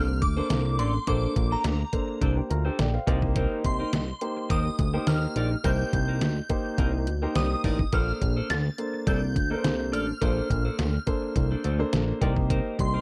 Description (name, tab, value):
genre	early-eighties boogie funk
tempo	105 BPM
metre	4/4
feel	straight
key	Bb major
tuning	A4 = 437 Hz
part	shimmering bell with halo	melody	0.0-13.0 s	Bb5 to A6	-36 LUFS	equal	ensemble chorus, phaser
part	warm grand piano	accompaniment	0.0-13.0 s	Bb3 to Bb5	-34 LUFS	equal	none
part	clean electric guitar	riff	0.0-13.0 s	D4 to D5	-36 LUFS	equal	lush chorus
part	chorused synth bass	bass	0.0-13.0 s	A1 to Eb2	-29 LUFS	equal	none
part	detuned 8-bit digital drum machine	drums	0.2-12.9 s	hi-hat, kick drum, snare drum	-30 LUFS	equal	none
room	little or no reverb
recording	dry, close 1970s-style studio recording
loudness	-26 LUFS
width	mono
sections	0.0-13.0 A section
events	grand piano fill 2.2-3.4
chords	0.0 Bbmaj9; 3.1 Cm7; 7.9 Bbmaj9; 12.2 Cm7